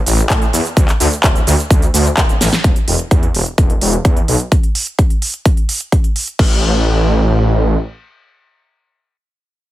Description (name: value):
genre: EDM, festival progressive house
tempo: 128 BPM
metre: 4/4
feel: straight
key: unclear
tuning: A4 = 440 Hz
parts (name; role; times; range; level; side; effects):
- wide detuned saw bass; bass; 0.1-7.8 s; D1 to A2; -15 LUFS; equal; chorus, sidechain pumping
- big-room dance drum kit; drums; 0.1-6.5 s; crash cymbal, handclaps, hi-hat, shaker, snare drum; -18 LUFS; equal; none
- electronic kick drum; drums; 0.3-6.5 s; none; -12 LUFS; equal; none
room: digital ambience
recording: heavily compressed radio sound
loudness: -12 LUFS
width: side -15 dB against mid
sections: 0.0-2.6 A section; 2.6-6.4 B section; 6.4-9.7 C section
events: drop 0.0-2.6; drum fill 2.4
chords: none